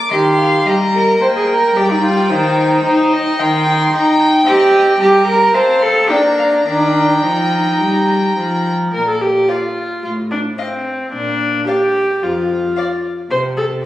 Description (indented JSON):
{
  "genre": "quick classical-period movement for string quartet",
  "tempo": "110 BPM",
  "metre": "4/4",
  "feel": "rubato",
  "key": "Eb major, Bb major from 8.9 s",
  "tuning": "A4 = 439 Hz",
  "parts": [
    { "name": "dark violin", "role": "melody", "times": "0.0-12.8 s", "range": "F5 to D6", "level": "-21 LUFS", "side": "left 3 dB", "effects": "none" },
    { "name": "dark violin", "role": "second line", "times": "0.1-12.9 s", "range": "C5 to G5", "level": "-21 LUFS", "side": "left 1 dB", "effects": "none" },
    { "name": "warm viola", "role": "accompaniment", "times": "0.1-13.7 s", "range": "Eb3 to C5", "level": "-17 LUFS", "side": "left 1 dB", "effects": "none" },
    { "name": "rich cello", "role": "bass", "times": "0.1-13.8 s", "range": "F2 to C5", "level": "-15 LUFS", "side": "right 1 dB", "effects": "none" }
  ],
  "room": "moderate scoring stage reverb, RT60 1.8 s",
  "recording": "recorded on a phone in the room, studio reverb",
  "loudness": "-12 LUFS",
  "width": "side -14 dB against mid",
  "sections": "0.0-8.9 A section; 8.9-13.9 B section",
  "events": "none",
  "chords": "0.1 Eb; 2.3 Eb6; 4.5 Cm; 5.5 F/C; 6.1 Bb; 6.7 Eb; 8.9 Bb5; 10.0 F/A (rootless); 11.1 Bb; 13.3 N.C."
}